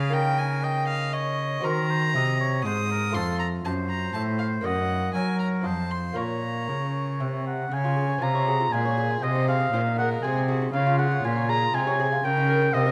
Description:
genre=classical, baroque-style sonata movement with continuo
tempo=119 BPM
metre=3/4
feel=straight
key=Bb minor, Db major from 7.7 s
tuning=A4 = 440 Hz
part: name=warm violin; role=melody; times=0.0-12.9 s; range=F4 to Eb6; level=-34 LUFS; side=equal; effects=none
part: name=clear oboe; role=second line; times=0.0-12.9 s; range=Ab4 to Bb5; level=-30 LUFS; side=equal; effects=none
part: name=lute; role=accompaniment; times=0.0-12.9 s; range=F2 to Eb5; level=-33 LUFS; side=equal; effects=none
part: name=rich cello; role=bass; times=0.0-12.9 s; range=F2 to Gb3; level=-29 LUFS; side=equal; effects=none
room=moderate recital hall reverb, RT60 1.6 s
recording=none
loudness=-25 LUFS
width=mono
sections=0.0-7.7 A section; 7.7-12.9 A section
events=none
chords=0.1 Eb5/Db; 1.6 Cm7b5; 3.1 F; 4.6 Ebm/Gb; 5.7 F7; 6.2 Bbm; 7.7 Db; 9.2 Ab; 10.7 Db; 12.2 Eb7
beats=| 0.14 0.64 1.13 | 1.64 2.14 2.64 | 3.14 3.64 4.14 | 4.64 5.14 5.66 | 6.17 6.68 7.20 | 7.71 8.22 8.72 | 9.22 9.72 10.23 | 10.73 11.23 11.73 | 12.24 12.74

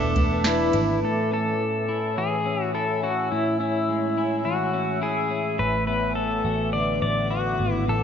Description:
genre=dream pop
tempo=105 BPM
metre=4/4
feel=straight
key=A major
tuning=A4 = 440 Hz
part: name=pedal steel guitar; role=melody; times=0.0-8.0 s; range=E4 to D5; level=-25 LUFS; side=left 1 dB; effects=tape echo
part: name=clean electric guitar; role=accompaniment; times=0.0-1.5 s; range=E2 to E4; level=-30 LUFS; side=right 2 dB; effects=harmonic tremolo, analog chorus
part: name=granular cloud pad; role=sustained chords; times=0.0-8.0 s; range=B4 to E6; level=-28 LUFS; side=left 1 dB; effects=built-in reverb
part: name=clean electric guitar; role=arpeggios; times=0.0-8.0 s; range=E2 to F#4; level=-28 LUFS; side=left 2 dB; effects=analog chorus, tape echo
part: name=vintage muted picked electric bass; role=bass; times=0.0-1.0, 5.6-8.0 s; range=E1 to A1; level=-28 LUFS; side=right 1 dB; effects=none
part: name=soft vintage rhythm box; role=drums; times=0.2-0.9 s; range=kick drum, ride cymbal, snare drum, tambourine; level=-26 LUFS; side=right 1 dB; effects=none
room=moderate plate reverb, RT60 1.4 s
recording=nothing above 7.5 kHz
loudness=-22 LUFS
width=side -8 dB against mid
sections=0.0-1.0 A section; 1.0-8.0 B section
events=none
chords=0.0 E7sus4; 1.0 Amaj7; 5.6 Bm7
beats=0.45 | 1.02 1.59 2.16 2.73 | 3.31 3.88 4.45 5.02 | 5.59 6.16 6.73 7.31 | 7.88

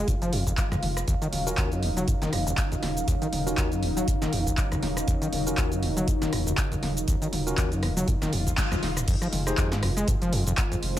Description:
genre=acid house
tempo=120 BPM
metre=4/4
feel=swing 56% on 16ths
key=unclear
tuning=A4 = 442 Hz
part: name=warm analog pad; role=sustained chords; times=0.0-11.0 s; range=Db3 to F4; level=-35 LUFS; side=right 1 dB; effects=lush chorus, sidechain pumping
part: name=overdriven acid bass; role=riff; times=0.0-10.8 s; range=Eb2 to Ab3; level=-29 LUFS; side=equal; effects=distortion, sidechain pumping
part: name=saturated sub bass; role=bass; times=0.0-11.0 s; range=Eb1 to F1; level=-32 LUFS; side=equal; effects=sidechain pumping
part: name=deep dark ambient pad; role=texture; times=0.0-11.0 s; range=Eb4 to F5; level=-34 LUFS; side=equal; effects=chorus, built-in reverb, sidechain pumping
part: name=electronic kick drum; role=drums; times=0.1-10.7 s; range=none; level=-27 LUFS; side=equal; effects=none
part: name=punchy analog drum machine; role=drums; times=0.1-11.0 s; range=crash cymbal, handclaps, hi-hat, rim click, shaker, snare drum, toms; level=-30 LUFS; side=equal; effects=none
part: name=tine electric piano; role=stabs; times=1.5-9.7 s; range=Db4 to C5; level=-34 LUFS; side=left 1 dB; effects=medium stereo tremolo, dub echo
part: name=swell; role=sound effects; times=8.3-9.1 s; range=none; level=-38 LUFS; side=left 8 dB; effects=none
room=light reverb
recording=none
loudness=-24 LUFS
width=side -12 dB against mid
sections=0.0-9.1 A section; 9.1-11.0 B section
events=swell 8.3-9.1; drum fill 8.6-9.1; band accent 8.6; drop 9.1-11.0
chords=0.0 Fm7; 1.1 Ebm7; 9.1 Fm7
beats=0.08 0.58 | 1.08 1.58 2.08 2.58 | 3.08 3.58 4.08 4.58 | 5.08 5.58 6.08 6.58 | 7.08 7.58 8.08 8.58 | 9.08 9.58 10.08 10.58

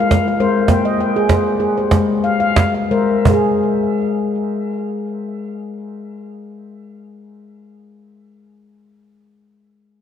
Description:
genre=world meditative, meditative tuned percussion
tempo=84-106 BPM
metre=4/4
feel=swing 53% on 16ths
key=Ab major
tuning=A4 = 440 Hz
part: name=handpan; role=arpeggios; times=0.0-7.8 s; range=Ab3 to G5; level=-17 LUFS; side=left 2 dB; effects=ping-pong delay
part: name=cajon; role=percussion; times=0.1-3.6 s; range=none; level=-17 LUFS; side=right 3 dB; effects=none
room=wet echo chamber reverb, RT60 2.5 s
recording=none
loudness=-14 LUFS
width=side -8 dB against mid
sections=0.0-3.3 A section; 3.3-9.0 B section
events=slowing down 0.0-3.3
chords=0.0 Ab; 0.7 Bb13sus4; 1.9 Ab; 3.3 N.C.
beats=0.11 | 0.69 1.29 1.91 2.57 | 3.26 3.98 4.70 5.41 | 6.13 6.85 7.56

